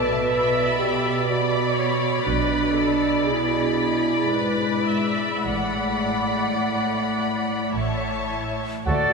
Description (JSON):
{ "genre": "classical", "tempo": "51-62 BPM", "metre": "3/4", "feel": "rubato", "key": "D major", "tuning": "A4 = 440 Hz", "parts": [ { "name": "warm symphonic violin section", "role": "melody", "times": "0.0-8.9 s", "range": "A4 to B5", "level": "-30 LUFS", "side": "left 3 dB", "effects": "none" }, { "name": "rich symphonic violin section", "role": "second line", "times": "0.0-9.1 s", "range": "D5 to F#5", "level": "-28 LUFS", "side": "left 3 dB", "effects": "none" }, { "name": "rich symphonic viola section", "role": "accompaniment", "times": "0.0-9.0 s", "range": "A3 to E5", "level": "-28 LUFS", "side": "right 1 dB", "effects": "none" }, { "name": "dark French horn section", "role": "sustained chords", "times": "0.0-9.1 s", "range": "G#3 to B4", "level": "-25 LUFS", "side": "equal", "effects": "none" }, { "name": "clear symphonic cello section", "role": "bass", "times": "0.0-9.0 s", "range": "D2 to B2", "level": "-28 LUFS", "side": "right 3 dB", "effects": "none" }, { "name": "warm studio double bass section", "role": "bass", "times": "0.0-8.9 s", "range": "A1 to D2", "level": "-32 LUFS", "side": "right 3 dB", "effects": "none" }, { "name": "bright silver concert flute", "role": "second line", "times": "8.9-9.1 s", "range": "D5", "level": "-24 LUFS", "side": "left 3 dB", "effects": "none" }, { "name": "clear clarinet", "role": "second line", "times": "8.9-9.1 s", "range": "F#4", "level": "-34 LUFS", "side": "left 2 dB", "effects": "none" }, { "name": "clear oboe", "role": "second line", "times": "8.9-9.1 s", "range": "A4", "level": "-26 LUFS", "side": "right 2 dB", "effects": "none" }, { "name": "warm bassoon", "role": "accompaniment", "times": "8.9-9.1 s", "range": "F#4", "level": "-26 LUFS", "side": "right 7 dB", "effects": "none" } ], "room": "wet cathedral reverb, RT60 5.2 s", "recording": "recorded in a church or concert hall", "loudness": "-20 LUFS", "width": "side -4 dB against mid", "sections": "0.0-8.9 A section", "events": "none", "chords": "0.0 Bm; 2.3 E7/B; 5.5 D/A; 7.8 A" }